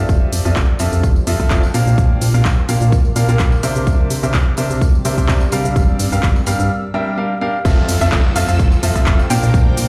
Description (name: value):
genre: piano house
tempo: 127 BPM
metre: 4/4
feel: swing 54% on 16ths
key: F major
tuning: A4 = 440 Hz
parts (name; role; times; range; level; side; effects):
- bright baby grand piano; riff; 0.0-9.9 s; Bb2 to F5; -22 LUFS; equal; sidechain pumping, dub echo
- organ-like FM bass; bass; 0.0-9.9 s; F1 to C3; -20 LUFS; equal; sidechain pumping
- granular cloud pad; texture; 0.0-9.9 s; C4 to E6; -31 LUFS; equal; built-in reverb, sidechain pumping
- electronic kick drum; drums; 0.1-9.6 s; none; -18 LUFS; equal; overdrive
- house drum kit; drums; 0.1-9.9 s; handclaps, hi-hat, shaker; -27 LUFS; equal; overdrive
- tambourine; percussion; 0.1-9.9 s; none; -36 LUFS; equal; none
- string machine, violins; sustained chords; 7.7-9.9 s; F4 to E6; -32 LUFS; equal; ensemble chorus, sidechain pumping
- downlifter; sound effects; 7.7-9.9 s; none; -30 LUFS; equal; none
- hollow square pluck; melody; 8.0-9.5 s; F5 to G5; -26 LUFS; equal; chorus, cassette tape, dub echo
room: light reverb, digital ambience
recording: played on a big sound system in a bare room, large studio reverb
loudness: -15 LUFS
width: mono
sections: 0.0-7.6 A section; 7.6-9.9 B section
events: break 6.7-7.6; drop 7.6-9.9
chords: 0.1 Fmaj7; 1.7 Bb6; 3.6 C9; 5.8 Gm7; 7.6 Fmaj7; 9.3 Bb6